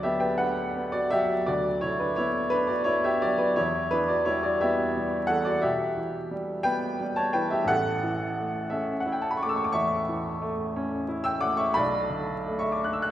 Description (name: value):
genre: classical, romantic nocturne for solo piano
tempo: 58 BPM (dotted quarters)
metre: 12/8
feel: rubato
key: unclear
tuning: A4 = 440 Hz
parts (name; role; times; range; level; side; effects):
- clear upright piano; solo; 0.0-13.1 s; A1 to F#6; -24 LUFS; equal; none
room: wet concert hall reverb, RT60 2.2 s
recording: heard from further back in the room, vinyl crackle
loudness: -24 LUFS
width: side -12 dB against mid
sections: 0.0-13.1 A section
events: none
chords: 0.0 Bm/D; 3.6 Em; 11.8 Bm7